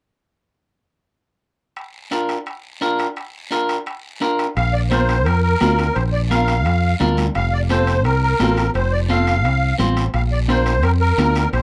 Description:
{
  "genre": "latin, cumbia",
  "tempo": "172 BPM",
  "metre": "4/4",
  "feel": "straight",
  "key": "Bb major",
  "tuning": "A4 = 441 Hz",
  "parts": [
    { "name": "guiro", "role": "percussion", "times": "1.8-11.6 s", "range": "none", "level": "-38 LUFS", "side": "equal", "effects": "none" },
    { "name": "timbales", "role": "percussion", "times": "1.8-11.6 s", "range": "none", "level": "-31 LUFS", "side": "equal", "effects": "none" },
    { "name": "clean electric guitar", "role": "accompaniment", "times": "2.1-11.4 s", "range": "C4 to C5", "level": "-24 LUFS", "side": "equal", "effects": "none" },
    { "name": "musette accordion", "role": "melody", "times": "4.6-11.6 s", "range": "Bb4 to F5", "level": "-23 LUFS", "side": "equal", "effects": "slapback echo" },
    { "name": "fingered electric bass", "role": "bass", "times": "4.6-11.6 s", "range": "F1 to F2", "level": "-21 LUFS", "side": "equal", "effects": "none" },
    { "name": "congas", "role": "percussion", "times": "4.6-11.6 s", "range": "none", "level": "-27 LUFS", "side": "equal", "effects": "none" }
  ],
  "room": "little or no reverb",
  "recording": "dry, close 1970s-style studio recording",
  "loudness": "-19 LUFS",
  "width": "mono",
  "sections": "1.8-4.6 A section; 4.6-11.6 B section",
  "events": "none",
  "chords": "1.8 Bb; 7.4 F; 10.1 Bb",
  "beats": "| 1.76 2.12 2.46 2.81 | 3.17 3.51 3.86 4.21 | 4.56 4.91 5.26 5.61 | 5.96 6.31 6.66 7.00 | 7.35 7.70 8.05 8.40 | 8.75 9.09 9.44 9.79 | 10.14 10.49 10.84 11.18 | 11.53"
}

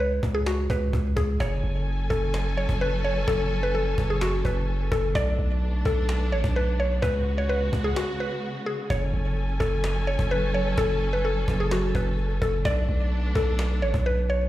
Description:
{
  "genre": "hip hop, trap",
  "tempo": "128 BPM",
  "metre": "4/4",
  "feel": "half-time",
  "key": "F# minor",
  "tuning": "A4 = 440 Hz",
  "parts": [
    { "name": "mallet-like synth pluck", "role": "melody", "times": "0.0-14.5 s", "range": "F#4 to D5", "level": "-28 LUFS", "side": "left 1 dB", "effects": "chorus, low-pass filter, digital delay" },
    { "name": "long sustained 808-style bass", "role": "bass", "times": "0.0-14.5 s", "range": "F#1 to C#2", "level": "-25 LUFS", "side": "equal", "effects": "none" },
    { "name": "cajon", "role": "drums", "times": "0.0-14.3 s", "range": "none", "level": "-33 LUFS", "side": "equal", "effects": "none" },
    { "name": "dark symphonic string section", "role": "sustained chords", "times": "1.4-14.5 s", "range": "C#3 to G#5", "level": "-32 LUFS", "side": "equal", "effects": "none" }
  ],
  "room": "light reverb, small room ambience",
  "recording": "played on a big sound system in a bare room, stone room reverb",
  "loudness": "-23 LUFS",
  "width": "side -14 dB against mid",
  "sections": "0.0-14.5 A section",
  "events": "hi-hats muted 1.4-8.9; break 8.0-8.9",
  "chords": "0.0 C#7(no3); 1.4 F#madd9; 5.2 Bm7; 7.0 C#7sus4; 8.9 F#madd9; 12.7 Bm7",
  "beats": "0.00 0.46 0.93 | 1.40 1.87 2.34 2.81 | 3.28 3.75 4.21 4.68 | 5.15 5.62 6.09 6.56 | 7.03 7.50 7.96 8.43 | 8.90 9.37 9.84 10.31 | 10.78 11.24 11.71 12.18 | 12.65 13.12 13.59 14.06"
}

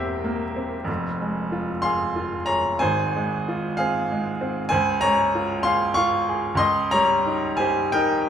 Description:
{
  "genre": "classical, romantic nocturne for solo piano",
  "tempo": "63 BPM (dotted quarters)",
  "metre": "6/8",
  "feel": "uneven beats, rubato",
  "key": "F minor",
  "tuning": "A4 = 440 Hz",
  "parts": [
    { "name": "clear baby grand piano", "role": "solo", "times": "0.0-8.3 s", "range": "E1 to Db6", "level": "-20 LUFS", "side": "equal", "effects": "none" }
  ],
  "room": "moderate recital hall reverb, RT60 1.3 s",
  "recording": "minimal, uncompressed stereo recording",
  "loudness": "-20 LUFS",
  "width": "side -8 dB against mid",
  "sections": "0.0-8.3 A section",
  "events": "none",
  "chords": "0.0 C7/E; 0.9 Fm; 2.8 Fm/Ab; 4.7 Dbmaj7; 6.6 Eb7/Db",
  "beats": "| 0.89 1.84 | 2.81 3.79 | 4.71 5.67 | 6.61 7.61"
}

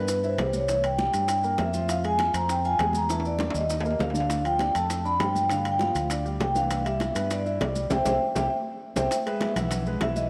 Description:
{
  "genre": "Afro-Cuban jazz",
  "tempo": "200 BPM",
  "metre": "4/4",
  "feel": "straight",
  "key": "C major",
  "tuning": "A4 = 441 Hz",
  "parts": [
    { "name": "vibraphone with soft mallets", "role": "melody", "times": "0.0-10.3 s", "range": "B4 to B5", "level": "-29 LUFS", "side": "equal", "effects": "none" },
    { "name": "warm concert grand piano", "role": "accompaniment", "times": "0.0-10.3 s", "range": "D3 to F5", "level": "-35 LUFS", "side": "equal", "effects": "none" },
    { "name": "fingered electric bass", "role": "bass", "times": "0.0-10.3 s", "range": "B1 to G2", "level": "-33 LUFS", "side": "equal", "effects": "none" },
    { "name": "bongos", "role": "percussion", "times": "0.1-10.2 s", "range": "none", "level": "-37 LUFS", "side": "equal", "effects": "none" },
    { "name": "congas", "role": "percussion", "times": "0.1-10.3 s", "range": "none", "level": "-39 LUFS", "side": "equal", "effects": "none" },
    { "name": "maracas", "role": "percussion", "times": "0.1-10.3 s", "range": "none", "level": "-43 LUFS", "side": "equal", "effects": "none" },
    { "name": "timbales", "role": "percussion", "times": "0.1-10.2 s", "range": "none", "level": "-39 LUFS", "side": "equal", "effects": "none" }
  ],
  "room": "wet plate reverb, RT60 2.7 s",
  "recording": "none",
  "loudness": "-26 LUFS",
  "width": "mono",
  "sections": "0.0-9.1 A section; 9.1-10.3 B section",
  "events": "drum fill 3.1-4.3, 8.2-9.1; band accent 7.9-9.1",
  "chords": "0.0 Cmaj7; 0.7 C7; 1.9 Fm; 3.1 Emmaj7; 3.7 Eb5; 4.3 Dm; 5.5 G5; 6.7 Cmaj9; 9.1 Eadd9",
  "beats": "0.08 0.38 | 0.69 0.99 1.29 1.59 | 1.89 2.19 2.49 2.79 | 3.10 3.40 3.70 4.00 | 4.30 4.60 4.90 5.20 | 5.50 5.80 6.10 6.41 | 6.71 7.01 7.31 7.61 | 7.91 8.21 8.51 8.81 | 9.11 9.41 9.71 10.01"
}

